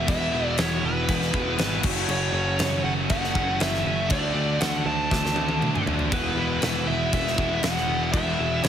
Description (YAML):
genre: hard rock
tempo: 119 BPM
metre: 4/4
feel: straight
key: unclear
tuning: A4 = 440 Hz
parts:
  - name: biting lead guitar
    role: melody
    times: 0.0-8.7 s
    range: B4 to A5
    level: -28 LUFS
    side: right 1 dB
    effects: overdrive, slapback echo
  - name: heavy high-gain guitar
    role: riff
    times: 0.0-8.7 s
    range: F#2 to E4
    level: -29 LUFS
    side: right 2 dB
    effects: distortion
  - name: overdriven semi-hollow guitar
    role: riff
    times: 0.0-8.7 s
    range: E2 to D4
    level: -30 LUFS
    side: left 2 dB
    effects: none
  - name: picked electric bass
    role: bass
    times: 0.0-8.7 s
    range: E1 to D2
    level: -29 LUFS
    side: equal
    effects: none
  - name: huge arena drum kit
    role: drums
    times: 0.1-8.7 s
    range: crash cymbal, kick drum, snare drum, toms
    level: -27 LUFS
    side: equal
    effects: none
room: light reverb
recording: heavily compressed radio sound, multiband compression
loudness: -22 LUFS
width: side -9 dB against mid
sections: 0.0-8.7 A section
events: drum fill 5.1-6.1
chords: 0.0 E; 1.8 F#m; 4.1 D; 6.1 E